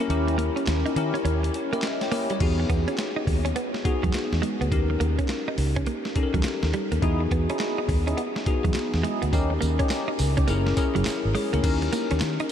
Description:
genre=R&B, new jack swing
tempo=104 BPM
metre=4/4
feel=swing 64% on 16ths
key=unclear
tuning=A4 = 438 Hz
part: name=bell-like tine electric piano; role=accompaniment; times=0.0-12.5 s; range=B3 to G5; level=-28 LUFS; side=left 3 dB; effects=analog chorus
part: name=direct-recorded clean electric guitar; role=riff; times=0.0-12.5 s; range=F#3 to D#4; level=-31 LUFS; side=right 4 dB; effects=analog chorus
part: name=tonewheel organ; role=stabs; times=0.1-2.3, 7.0-10.5 s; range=C#4 to G#4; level=-34 LUFS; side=right 1 dB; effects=overdrive, chorus vibrato, slow rotary speaker, diffuse ambient delay
part: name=vintage muted fingered electric bass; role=bass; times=0.1-12.4 s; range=F#1 to D#3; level=-25 LUFS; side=equal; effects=none
part: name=boom bap sampler-style drum kit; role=drums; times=0.1-12.5 s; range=crash cymbal, handclaps, hi-hat, kick drum, snare drum, tambourine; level=-29 LUFS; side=equal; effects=none
room=moderate huge ambient reverb, RT60 8.9 s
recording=dreamy mix soaked in reverb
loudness=-22 LUFS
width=side -9 dB against mid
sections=0.0-2.4 A section; 2.4-11.6 B section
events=kick muted 0.1-2.4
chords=0.0 D#7b9; 2.4 Emaj7; 4.7 D#7; 7.0 Emaj7; 9.3 D#7; 10.5 F#7; 11.6 D#7

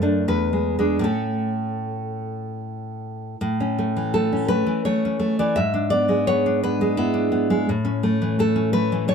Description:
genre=romantic piece for solo classical guitar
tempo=75-88 BPM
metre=3/4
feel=rubato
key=A major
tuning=A4 = 440 Hz
part: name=nylon-string guitar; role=solo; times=0.0-9.1 s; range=E2 to E5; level=-20 LUFS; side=equal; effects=none
room=little or no reverb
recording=close, detailed microphones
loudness=-19 LUFS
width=side -6 dB against mid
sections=0.0-3.4 A section; 3.4-9.1 A section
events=none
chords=0.3 E7; 1.0 A; 5.6 E7/G#; 7.7 A

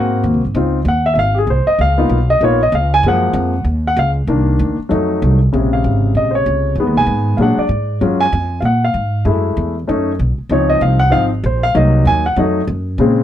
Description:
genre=jazz, big band swing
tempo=193 BPM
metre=4/4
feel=swing 62% on 8ths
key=Bb minor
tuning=A4 = 440 Hz
part: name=warm baby grand piano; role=accompaniment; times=0.0-13.2 s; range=C3 to Ab5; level=-15 LUFS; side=left 1 dB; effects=none
part: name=upright bass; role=bass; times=0.0-13.2 s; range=Ab1 to Bb2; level=-16 LUFS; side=equal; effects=none
room=light reverb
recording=dark, warm production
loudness=-12 LUFS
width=side -11 dB against mid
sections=0.0-5.5 A section; 5.5-13.2 A section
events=grand piano solo 0.0-5.5, 5.5-13.2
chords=0.0 Ab9; 0.5 Dbmaj9; 1.8 Db13; 3.0 Gbmaj9; 4.3 Cm9; 4.9 F7b9; 5.5 Bbm7; 6.8 Fm7b5; 7.4 Bbaug7; 8.0 Gbmaj9/F; 9.3 Gbm7; 9.9 B9; 10.5 Dbmaj7; 11.7 Cm7b5; 12.4 F7b9

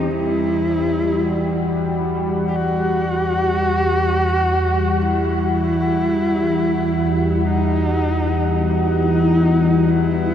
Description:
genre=dark ambient drone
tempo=free time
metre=none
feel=none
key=E harmonic minor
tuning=A4 = 445 Hz
part: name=warm horsehead fiddle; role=melody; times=0.0-10.3 s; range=Eb4 to G4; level=-21 LUFS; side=equal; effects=shimmer reverb, diffuse ambient delay
part: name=sweeping resonant pad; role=sustained chords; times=0.0-10.3 s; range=G3 to F#5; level=-22 LUFS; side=left 1 dB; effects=chorus, shimmer reverb
part: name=analog drone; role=drone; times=0.0-10.3 s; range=E2 to E3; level=-20 LUFS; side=equal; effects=chorus, phaser
room=wet huge ambient reverb, RT60 7.9 s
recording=dark, warm production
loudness=-16 LUFS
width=side -9 dB against mid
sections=0.1-10.3 A section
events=filter sweep on synth drone 0.1-10.3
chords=0.1 Emadd9

